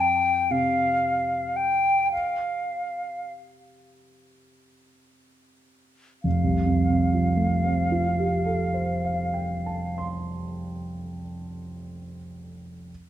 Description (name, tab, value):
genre	classical, impressionist duo for flute and grand piano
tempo	25-40 BPM (dotted quarters)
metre	6/8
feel	rubato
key	F major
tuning	A4 = 440 Hz
part	concert flute	melody	0.0-10.1 s	F5 to G5	-25 LUFS	left 2 dB	none
part	dark concert grand piano	accompaniment	0.0-12.9 s	F1 to C6	-26 LUFS	right 2 dB	none
room	moderate recital hall reverb, RT60 1.7 s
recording	none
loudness	-22 LUFS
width	side -11 dB against mid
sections	0.0-6.2 A section; 6.2-10.7 B section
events	slowing down 0.0-6.2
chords	0.0 F5; 6.2 Fadd9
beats	0.50 | 2.12 4.00 | 6.24 8.47